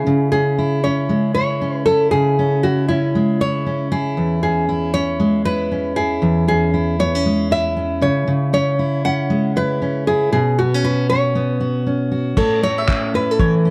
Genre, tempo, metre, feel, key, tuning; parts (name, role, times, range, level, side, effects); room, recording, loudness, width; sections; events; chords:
acoustic pop; 117 BPM; 4/4; swing 60% on 16ths; A4 = 445 Hz
nylon-string guitar; melody; 0.0-13.7 s; E4 to F#5; -22 LUFS; equal
fingerpicked steel-string acoustic guitar; accompaniment; 0.0-13.7 s; E2 to F#4; -20 LUFS; equal
mandolin; arpeggios; 12.4-13.5 s; C#5 to E5; -29 LUFS; equal
cloth-damped thuddy drum kit; drums; 12.4-13.5 s; crash cymbal, handclaps, kick drum; -23 LUFS; equal
moderate plate reverb, RT60 2.1 s; dark, warm production; -18 LUFS; mono
0.0-12.4 A section; 12.4-13.7 B section
0.0 C#m; 4.2 E6; 8.0 C#m; 10.3 Bsus2; 12.4 A